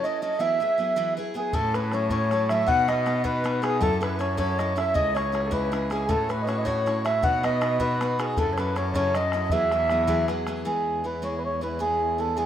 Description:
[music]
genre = celtic folk, Celtic jig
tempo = 105 BPM (dotted quarters)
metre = 6/8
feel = straight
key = E major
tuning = A4 = 440 Hz
[part]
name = mellow accordion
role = melody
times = 0.0-12.5 s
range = G#4 to F#5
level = -25 LUFS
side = right 2 dB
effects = none
[part]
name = bright reedy wooden flute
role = second line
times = 0.0-10.3 s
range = G#4 to F#5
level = -31 LUFS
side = left 7 dB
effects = none
[part]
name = picked steel-string acoustic guitar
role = accompaniment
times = 0.0-12.5 s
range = F#2 to C#5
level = -32 LUFS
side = equal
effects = none
[part]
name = clear cello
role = bass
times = 1.5-10.6 s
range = C#2 to B2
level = -28 LUFS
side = equal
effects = none
[part]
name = bodhran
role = percussion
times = 1.5-10.6 s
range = none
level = -33 LUFS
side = equal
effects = none
[part]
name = muted cello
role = drone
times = 10.7-12.5 s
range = E2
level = -33 LUFS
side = left 2 dB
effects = none
[sound]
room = moderate lush hall reverb, RT60 2.2 s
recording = rough home demo mix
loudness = -22 LUFS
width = side -10 dB against mid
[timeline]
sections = 0.0-1.5 A section; 1.5-10.7 A section; 10.7-12.5 B section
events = none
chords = 0.4 Eadd9; 1.5 A6; 2.7 B; 3.8 F#m7; 5.0 C#m; 6.1 A6; 7.2 B; 8.4 F#m7; 9.5 Eadd9; 10.7 E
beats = | 0.40 0.97 | 1.54 2.11 | 2.67 3.24 | 3.81 4.38 | 4.95 5.52 | 6.09 6.66 | 7.23 7.80 | 8.37 8.94 | 9.51 10.08 | 10.65 11.22 | 11.79 12.37

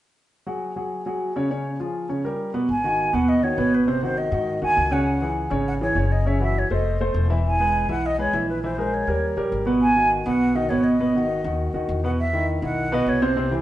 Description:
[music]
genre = Afro-Cuban jazz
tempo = 202 BPM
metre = 4/4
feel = straight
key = G# minor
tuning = A4 = 442 Hz
[part]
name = warm concert grand piano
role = accompaniment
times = 0.5-13.6 s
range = B2 to E5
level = -22 LUFS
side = equal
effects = none
[part]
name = breathy mellow silver concert flute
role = melody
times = 2.7-13.6 s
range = B4 to G#5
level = -24 LUFS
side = right 1 dB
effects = none
[part]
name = upright bass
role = bass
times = 2.7-13.6 s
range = E1 to G#2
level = -26 LUFS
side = left 1 dB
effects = none
[sound]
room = wet stone room reverb, RT60 1.2 s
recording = band playing live in one room, nothing above 10.9 kHz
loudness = -20 LUFS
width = side -14 dB against mid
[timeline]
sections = 0.3-2.7 A section; 2.7-12.2 B section; 12.2-13.6 C section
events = none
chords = 0.3 C#sus4; 1.5 C#; 2.1 Gdim; 2.7 G#m7; 3.9 G#7; 5.1 C#madd11; 6.3 F#m7; 6.8 F; 7.4 E6; 8.6 A#m7b5; 9.2 D#7; 9.8 G#m7; 12.2 Esus2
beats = | 0.31 0.61 0.91 1.20 | 1.50 1.80 2.10 2.39 | 2.69 2.99 3.29 3.58 | 3.88 4.18 4.47 4.77 | 5.07 5.37 5.66 5.96 | 6.26 6.55 6.85 7.15 | 7.44 7.74 8.04 8.33 | 8.63 8.93 9.22 9.52 | 9.82 10.11 10.41 10.71 | 11.00 11.30 11.59 11.89 | 12.19 12.48 12.78 13.07 | 13.37

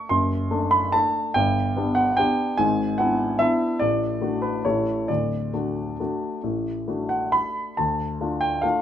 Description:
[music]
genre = classical, piano waltz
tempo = 131-154 BPM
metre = 3/4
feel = rubato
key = D major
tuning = A4 = 445 Hz
[part]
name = warm grand piano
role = solo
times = 0.0-8.8 s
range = D1 to C6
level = -21 LUFS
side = equal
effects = none
[sound]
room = light reverb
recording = none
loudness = -21 LUFS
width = side -10 dB against mid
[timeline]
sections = 0.0-7.8 A section; 7.8-8.8 B section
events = none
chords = 0.0 D/F#; 1.3 G; 2.6 E7/G#; 3.8 D/A; 4.6 A7; 5.1 D; 7.8 Dm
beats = | 0.10 0.51 0.93 | 1.34 1.75 2.18 | 2.58 2.98 3.40 | 3.81 4.22 4.65 | 5.09 5.54 5.99 | 6.44 6.88 7.33 | 7.78 8.20 8.64

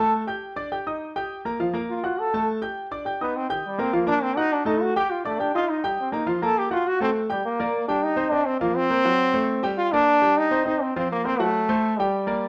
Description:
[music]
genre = latin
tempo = 205 BPM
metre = 4/4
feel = straight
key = G minor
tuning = A4 = 440 Hz
[part]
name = bright trombone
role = melody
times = 0.0-12.5 s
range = Eb3 to A4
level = -25 LUFS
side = equal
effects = slapback echo
[part]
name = warm concert grand piano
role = accompaniment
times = 0.0-12.5 s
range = F3 to G6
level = -28 LUFS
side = equal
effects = none
[sound]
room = moderate studio reverb, RT60 0.8 s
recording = dark, warm production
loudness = -24 LUFS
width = mono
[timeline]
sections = 0.0-7.4 A section; 7.4-12.5 B section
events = trombone solo 0.0-7.4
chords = 0.4 G5; 1.0 Eb; 1.6 Bb5; 2.2 F#m/A; 2.8 G5; 3.4 Eb6; 3.9 Bb5; 4.5 Dadd11/A; 5.1 G5; 5.7 Eb6/G; 6.3 Bb5; 6.9 Gsus2; 7.4 Gm; 8.0 Cm; 8.6 Bbsus2; 9.2 F#dim; 9.8 Gm; 10.4 Cm; 10.9 Bbsus2; 11.5 F#dim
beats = 0.13 | 0.42 0.71 1.01 1.30 | 1.59 1.89 2.18 2.47 | 2.77 3.06 3.35 3.64 | 3.94 4.23 4.52 4.81 | 5.11 5.40 5.69 5.98 | 6.28 6.57 6.86 7.15 | 7.44 7.74 8.03 8.32 | 8.61 8.90 9.20 9.49 | 9.78 10.07 10.36 10.66 | 10.95 11.24 11.53 11.83 | 12.12 12.41

